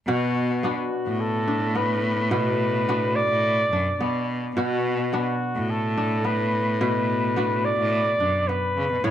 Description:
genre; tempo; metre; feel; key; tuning
folktronica; 107 BPM; 4/4; swing 56% on 16ths; B minor; A4 = 440 Hz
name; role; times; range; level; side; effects
warm flugelhorn; melody; 0.1-9.1 s; F#4 to D5; -25 LUFS; right 1 dB; vintage 12-bit sampler grit, plate reverb, ping-pong delay
kora; arpeggios; 0.1-9.1 s; A2 to F#4; -27 LUFS; left 2 dB; plate reverb, ping-pong delay
clear cello; bass; 0.1-9.1 s; F#2 to C#3; -26 LUFS; equal; none
room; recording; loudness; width
moderate small room reverb, RT60 0.6 s; none; -21 LUFS; side -10 dB against mid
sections
0.1-9.1 A section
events
none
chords
0.1 Bm

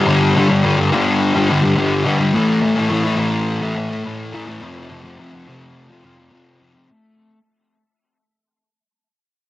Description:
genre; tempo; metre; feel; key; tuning
rock; 106 BPM; 4/4; straight; unclear; A4 = 440 Hz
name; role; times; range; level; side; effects
fuzz guitar; solo; 0.0-7.4 s; F2 to A3; -15 LUFS; left 1 dB; distortion, wide subtle chorus, cassette tape, tape echo
room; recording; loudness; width
moderate studio reverb, RT60 0.5 s; home recording on cassette; -14 LUFS; side -16 dB against mid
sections
0.0-6.9 A section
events
fade-out 0.0-6.9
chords
0.0 G5; 2.3 A5; 4.6 F5

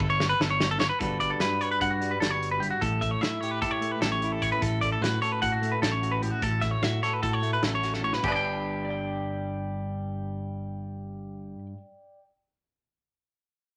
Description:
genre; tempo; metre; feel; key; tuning
math rock and midwest emo; 298 BPM (eighths); 9/8; straight; G lydian; A4 = 441 Hz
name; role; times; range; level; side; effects
clean electric guitar; arpeggios; 0.0-11.7 s; F#4 to G5; -30 LUFS; equal; none
fingered electric bass; bass; 0.0-11.5 s; G1 to A2; -36 LUFS; equal; none
loose indie drum kit; drums; 0.0-8.3 s; crash cymbal, hi-hat, kick drum, snare drum; -34 LUFS; equal; none
clean electric guitar; accompaniment; 1.0-12.2 s; G2 to G5; -34 LUFS; equal; none
room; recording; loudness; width
wet small room ambience, RT60 0.5 s; none; -28 LUFS; mono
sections
0.0-1.0 A section; 1.0-8.2 B section; 8.2-11.9 C section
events
drum fill 0.0-1.0, 7.9-8.2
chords
0.0 Gadd9; 1.0 Gmaj9; 2.8 A9; 4.6 Dmaj9/A (rootless); 8.2 G

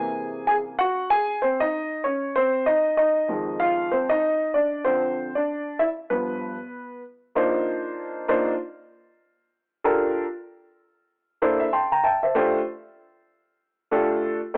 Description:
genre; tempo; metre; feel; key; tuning
hip hop; 96 BPM; 4/4; swing 59% on 16ths; unclear; A4 = 439 Hz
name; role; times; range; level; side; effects
dark grand piano; solo; 0.0-14.6 s; F2 to C6; -24 LUFS; equal; cassette tape
room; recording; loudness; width
light reverb, studio ambience; home recording on cassette, telephone sound; -24 LUFS; mono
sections
0.0-7.4 A section; 7.4-14.6 B section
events
grand piano solo 0.0-7.4; grand piano fill 11.1-12.4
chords
0.0 C7alt; 2.4 Fm7; 4.9 Dm7; 6.1 G7; 7.4 Cm11; 9.9 Gm9; 11.1 C13; 12.4 F69

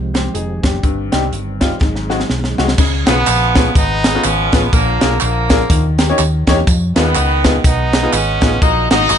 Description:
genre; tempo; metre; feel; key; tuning
uptempo gospel; 123 BPM; 4/4; swing 59% on 8ths; unclear; A4 = 439 Hz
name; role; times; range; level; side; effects
mellow tonewheel organ; sustained chords; 0.0-2.8 s; Eb3 to Ab4; -26 LUFS; right 3 dB; slow rotary speaker, chorus vibrato
hollow-body short-scale fingered electric bass; bass; 0.0-9.2 s; F1 to F2; -18 LUFS; equal; none
bright upright piano; accompaniment; 0.1-9.2 s; G2 to Eb5; -20 LUFS; left 3 dB; none
crisp fusion drum kit; drums; 0.1-9.2 s; crash cymbal, hi-hat, kick drum, snare drum; -15 LUFS; equal; none
tambourine and handclaps; percussion; 2.8-9.2 s; none; -24 LUFS; right 6 dB; none
warm horn section; melody; 3.1-9.2 s; D3 to Eb4; -16 LUFS; right 1 dB; none
room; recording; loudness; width
little or no reverb; nothing above 10.9 kHz; -12 LUFS; side -8 dB against mid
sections
0.0-2.8 A section; 2.8-9.2 B section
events
drum fill 1.8-2.8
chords
0.0 Fm9; 0.8 Cm/G; 1.8 Ab7; 2.8 Db7; 4.7 Bb7; 5.7 Eb7; 6.7 Fm7b5; 8.6 Ebm

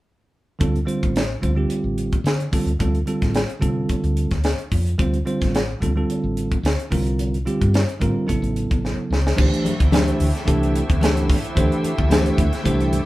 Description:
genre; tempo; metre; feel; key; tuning
electric jazz fusion; 109 BPM; 4/4; swing 54% on 16ths; unclear; A4 = 440 Hz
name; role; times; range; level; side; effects
bell-like tine electric piano; accompaniment; 0.6-13.0 s; C#3 to C5; -23 LUFS; right 1 dB; none
woody fretless electric bass; bass; 0.6-13.0 s; A1 to D3; -22 LUFS; equal; none
crisp fusion drum kit; drums; 0.6-13.1 s; crash cymbal, hi-hat, kick drum, snare drum; -22 LUFS; equal; none
soft additive organ-like pad; sustained chords; 9.5-13.1 s; D3 to G4; -28 LUFS; equal; ensemble chorus, built-in reverb
congas; percussion; 9.4-13.1 s; none; -26 LUFS; left 4 dB; none
room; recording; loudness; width
moderate studio reverb, RT60 0.8 s; band playing live in one room; -18 LUFS; side -17 dB against mid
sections
0.6-9.4 A section; 9.4-13.1 B section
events
drum fill 8.8-9.4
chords
0.6 Dm7; 6.9 C9sus4; 8.3 A69; 9.4 D9sus4

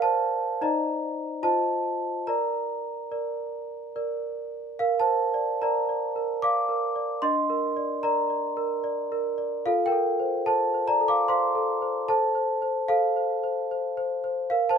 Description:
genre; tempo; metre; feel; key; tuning
classical, lullaby for celesta; 74 BPM; 3/4; rubato; Bb major; A4 = 439 Hz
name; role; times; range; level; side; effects
large celesta; solo; 0.0-14.8 s; D4 to D6; -24 LUFS; right 1 dB; none
room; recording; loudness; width
light reverb; none; -24 LUFS; side -7 dB against mid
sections
0.0-4.8 A section; 4.8-14.8 B section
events
none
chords
0.0 N.C.; 0.6 Cm/Eb; 1.4 F7; 2.3 Bb; 7.2 Bb/D; 9.6 F; 12.1 F/A

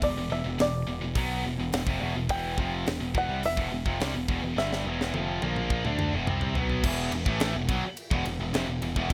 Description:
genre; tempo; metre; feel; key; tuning
heavy metal; 106 BPM; 4/4; straight; E minor; A4 = 443 Hz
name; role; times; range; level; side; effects
bluegrass banjo; melody; 0.0-6.5 s; D5 to G5; -33 LUFS; equal; digital delay
distorted electric guitar; riff; 0.0-9.1 s; E2 to D4; -36 LUFS; equal; distortion
heavy high-gain guitar; riff; 0.0-9.1 s; E2 to D4; -36 LUFS; equal; distortion
modern bright picked electric bass; bass; 0.0-9.1 s; E1 to D2; -35 LUFS; equal; none
tight metal drum kit; drums; 0.0-9.1 s; crash cymbal, hi-hat, kick drum, ride cymbal, snare drum, toms; -34 LUFS; equal; none
sludgy distorted guitar; riff; 6.8-9.1 s; E2 to A3; -38 LUFS; equal; overdrive
room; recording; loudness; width
light reverb; none; -29 LUFS; mono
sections
0.0-6.8 A section; 6.8-9.1 B section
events
drum fill 4.6-6.8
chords
0.0 Em; 6.8 E5

